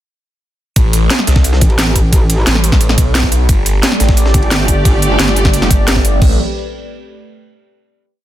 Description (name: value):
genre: dark technical drum and bass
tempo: 176 BPM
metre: 4/4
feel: straight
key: A minor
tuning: A4 = 439 Hz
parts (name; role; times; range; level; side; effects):
- phased detuned saw bass; bass; 0.8-6.4 s; G1 to C2; -13 LUFS; equal; phaser, overdrive, sidechain pumping
- breakbeat sampler-style drum kit; drums; 0.8-6.1 s; ride cymbal, snare drum; -23 LUFS; right 1 dB; high-pass filter on cymbals, high-pass filter on snare
- drum and bass drum kit; drums; 0.8-6.3 s; crash cymbal, kick drum, toms; -12 LUFS; equal; none
- drum and bass drum kit; drums; 0.8-6.1 s; hi-hat, snare drum; -16 LUFS; equal; none
- metallic wobble bass; bass; 1.6-5.7 s; G1 to A1; -14 LUFS; equal; chorus
- sweeping resonant pad; sustained chords; 3.5-6.4 s; A3 to D5; -19 LUFS; right 1 dB; chorus, sidechain pumping
room: little or no reverb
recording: dense, heavily limited modern master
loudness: -9 LUFS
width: side -13 dB against mid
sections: 0.8-6.2 drop; 6.2-7.6 final chord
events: drop 0.8-6.2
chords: 0.8 Amadd9; 3.5 Gsus2; 6.2 Amadd9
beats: | 0.76 1.10 1.44 1.78 | 2.13 2.47 2.81 3.15 | 3.49 3.83 4.17 4.51 | 4.85 5.19 5.54 5.88 | 6.22